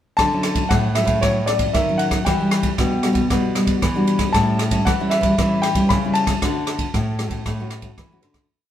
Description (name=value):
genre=samba and choro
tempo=116 BPM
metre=4/4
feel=straight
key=D major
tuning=A4 = 441 Hz
part: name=warm concert grand piano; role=melody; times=0.2-7.9 s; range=C#5 to B5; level=-22 LUFS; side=left 2 dB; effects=none
part: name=nylon-string guitar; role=accompaniment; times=0.2-8.5 s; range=A2 to F#4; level=-22 LUFS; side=left 1 dB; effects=none
part: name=nylon-string guitar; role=bass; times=0.2-8.5 s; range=A2 to E3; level=-23 LUFS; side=equal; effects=none
part: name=open jazz drum kit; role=drums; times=0.2-8.5 s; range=kick drum, ride cymbal, rim click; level=-23 LUFS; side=right 1 dB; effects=none
room=moderate stone room reverb, RT60 1.2 s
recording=band playing live in one room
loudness=-17 LUFS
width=side -10 dB against mid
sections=0.2-8.5 A section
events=fade-out 6.4-8.5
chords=0.2 Dmaj9; 2.3 Em9; 4.3 A7; 6.4 Dmaj7